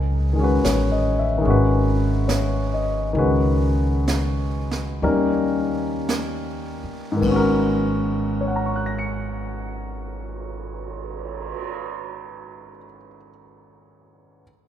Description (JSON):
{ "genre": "jazz ballad", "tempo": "51-75 BPM", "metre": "4/4", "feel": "swing 68% on 8ths", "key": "G# minor", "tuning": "A4 = 441 Hz", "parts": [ { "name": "upright bass", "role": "bass", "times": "0.0-11.5 s", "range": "G#1 to D#2", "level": "-24 LUFS", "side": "right 1 dB", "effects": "none" }, { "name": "warm grand piano", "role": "accompaniment", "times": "0.3-14.4 s", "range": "G#2 to C#7", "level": "-22 LUFS", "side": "left 2 dB", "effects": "none" }, { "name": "jazz brush drum kit", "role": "drums", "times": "0.6-11.7 s", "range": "brushed snare drum, cymbal swell, hi-hat, kick drum, ride cymbal, snare drum", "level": "-32 LUFS", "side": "right 4 dB", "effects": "none" } ], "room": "moderate cathedral reverb, RT60 4.8 s", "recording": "recorded in a church or concert hall", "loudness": "-19 LUFS", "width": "side -10 dB against mid", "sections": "0.0-7.2 A section; 7.2-11.9 B section", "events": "slowing down 0.0-7.2", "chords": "0.0 C#sus2; 1.5 G#m7; 3.2 C#sus2; 5.0 D#7; 7.2 G#m11", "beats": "0.64 1.46 2.29 | 3.16 4.07 5.04 6.09 | 7.23 8.41 9.59 10.75" }